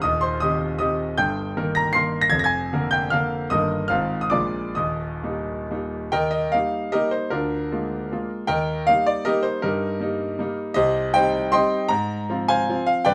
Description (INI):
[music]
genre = classical, romantic triple-time dance for piano with dotted rhythms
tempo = 123-168 BPM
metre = 3/4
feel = rubato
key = Eb major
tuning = A4 = 441 Hz
[part]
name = clear grand piano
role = solo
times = 0.0-13.1 s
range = Eb1 to C7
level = -23 LUFS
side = equal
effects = none
[sound]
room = light reverb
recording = close, detailed microphones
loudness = -23 LUFS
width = mono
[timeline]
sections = 0.0-6.1 A section; 6.1-13.1 B section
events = none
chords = 0.0 Cm/Eb; 1.2 Eb/G; 2.3 Bb7/F; 3.5 Eb/G; 3.9 Fm7/Ab; 4.3 Bb7; 4.8 Eb; 7.3 Bb7/D; 8.5 Eb; 9.6 Eb/G; 10.8 Cm; 11.9 Fm/Ab